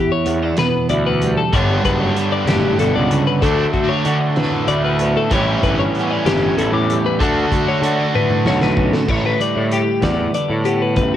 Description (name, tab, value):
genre	math rock and midwest emo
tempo	64 BPM (dotted quarters)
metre	6/8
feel	straight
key	unclear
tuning	A4 = 441 Hz
part	twelve-string electric guitar	accompaniment	0.0-11.2 s	E2 to G4	-20 LUFS	right 5 dB	cassette tape
part	twelve-string electric guitar	arpeggios	0.0-11.2 s	F#4 to D6	-20 LUFS	left 7 dB	cassette tape
part	fuzz picked electric bass	bass	0.3-11.2 s	F#1 to D3	-21 LUFS	equal	overdrive
part	loose indie drum kit	drums	0.3-11.1 s	crash cymbal, hi-hat, kick drum, snare drum, toms	-23 LUFS	equal	none
part	biting overdriven guitar	riff	1.5-9.1 s	G2 to F#4	-20 LUFS	equal	cassette tape
room	small room ambience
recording	home recording on cassette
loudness	-14 LUFS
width	side -11 dB against mid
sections	0.0-9.1 A section; 9.1-11.2 B section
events	drum fill 8.1-9.1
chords	0.0 Em7; 1.5 Gmaj7; 3.4 D6; 5.3 A7; 7.2 Dmaj7; 9.1 A9sus4